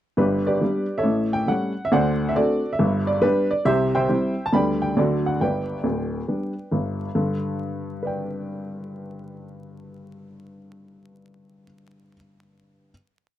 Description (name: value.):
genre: jazz, stride piano.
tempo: 137 BPM.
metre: 4/4.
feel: swing 66% on 8ths.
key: G major.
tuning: A4 = 440 Hz.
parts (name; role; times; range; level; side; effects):
warm upright piano; solo; 0.2-12.9 s; D1 to B5; -21 LUFS; equal; none.
room: light reverb.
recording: dry, close 1970s-style studio recording, vinyl crackle.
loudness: -20 LUFS.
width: side -12 dB against mid.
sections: 0.2-7.2 A section; 7.2-10.7 final chord.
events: none.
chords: 0.2 G; 1.0 A7; 1.9 D7; 2.8 G; 3.7 C; 4.5 G/D; 5.0 D; 5.4 G.